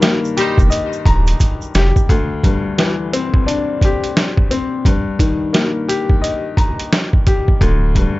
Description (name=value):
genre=hip hop, boom-bap hip-hop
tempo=87 BPM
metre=4/4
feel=swing 62% on 16ths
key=unclear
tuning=A4 = 440 Hz
part: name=clear upright piano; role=accompaniment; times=0.0-8.2 s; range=D2 to Bb5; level=-18 LUFS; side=left 3 dB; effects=cassette tape, plate reverb
part: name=trip hop sampler-style drum kit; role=drums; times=0.0-8.2 s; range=hi-hat, kick drum, snare drum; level=-15 LUFS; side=equal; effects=none
part: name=tube shaker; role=percussion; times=0.0-2.1 s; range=none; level=-36 LUFS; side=right 5 dB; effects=none
part: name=clear horn section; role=stabs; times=0.4-0.6 s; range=G3 to C5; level=-24 LUFS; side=right 1 dB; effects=plate reverb, ping-pong delay
part: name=soft dub sub bass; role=bass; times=0.6-1.9, 7.6-8.1 s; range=D1 to F1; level=-15 LUFS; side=equal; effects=none
room=light reverb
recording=nothing above 7.7 kHz, faint mains hum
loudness=-13 LUFS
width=side -19 dB against mid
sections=0.0-2.1 A section; 2.1-8.2 B section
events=drum fill 1.4-2.1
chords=0.0 F9sus4; 2.1 D9sus4; 4.9 Eb/G; 7.6 Dsus4